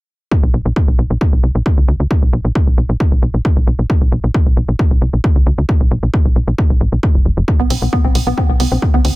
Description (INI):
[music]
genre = driving peak-time techno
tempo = 134 BPM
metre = 4/4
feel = straight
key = B phrygian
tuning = A4 = 440 Hz
[part]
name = electronic kick drum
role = drums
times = 0.3-8.9 s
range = none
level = -13 LUFS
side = equal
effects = none
[part]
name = tight sequencer bass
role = bass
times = 0.4-9.1 s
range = F#1 to D2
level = -16 LUFS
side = equal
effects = sidechain pumping
[part]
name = woody wave-folded pluck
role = riff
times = 7.6-9.1 s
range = B3 to C4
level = -19 LUFS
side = equal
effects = ensemble chorus, sidechain pumping, ping-pong delay
[part]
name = electronic hi-hat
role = drums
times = 7.7-9.1 s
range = none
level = -24 LUFS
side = right 5 dB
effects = none
[sound]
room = little or no reverb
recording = none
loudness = -12 LUFS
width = side -20 dB against mid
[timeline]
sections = 0.3-9.2 A section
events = none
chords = 0.3 B5